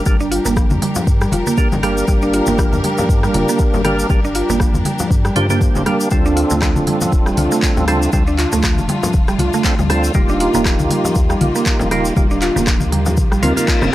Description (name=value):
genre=afro house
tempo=119 BPM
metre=4/4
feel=swing 56% on 16ths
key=G minor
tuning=A4 = 440 Hz
part: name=clear symphonic string section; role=sustained chords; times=0.0-13.9 s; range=D3 to Bb4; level=-25 LUFS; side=left 1 dB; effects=sidechain pumping
part: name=percussive tonewheel organ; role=stabs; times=0.0-13.9 s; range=Bb3 to C5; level=-20 LUFS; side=right 1 dB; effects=chorus vibrato, slow rotary speaker, sidechain pumping, analog delay
part: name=sub drop and reverse cymbal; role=sound effects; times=0.0-0.1, 13.4-13.9 s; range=none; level=-26 LUFS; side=left 6 dB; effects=none
part: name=mallet-like synth pluck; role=arpeggios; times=0.1-13.9 s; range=F3 to F4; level=-20 LUFS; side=right 1 dB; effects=chorus, sidechain pumping, analog delay
part: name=warm sub bass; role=bass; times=0.1-13.9 s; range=D1 to G2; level=-21 LUFS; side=equal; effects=tube saturation, sidechain pumping
part: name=afro-pop drum kit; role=drums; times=0.1-13.9 s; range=handclaps, hi-hat, rim click, toms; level=-23 LUFS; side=equal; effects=none
part: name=electronic kick drum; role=drums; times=0.1-13.8 s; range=none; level=-16 LUFS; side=equal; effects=none
part: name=cabasa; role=percussion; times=0.1-13.9 s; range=none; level=-28 LUFS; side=left 2 dB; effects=none
part: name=congas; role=percussion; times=0.1-13.9 s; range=none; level=-23 LUFS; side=left 1 dB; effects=none
room=studio ambience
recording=dry, gritty hardware recording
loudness=-13 LUFS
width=side -15 dB against mid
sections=0.0-13.9 A section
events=reverse cymbal 13.4-13.9; drum fill 13.7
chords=0.0 Gm; 6.1 Dm7; 10.1 Ebadd9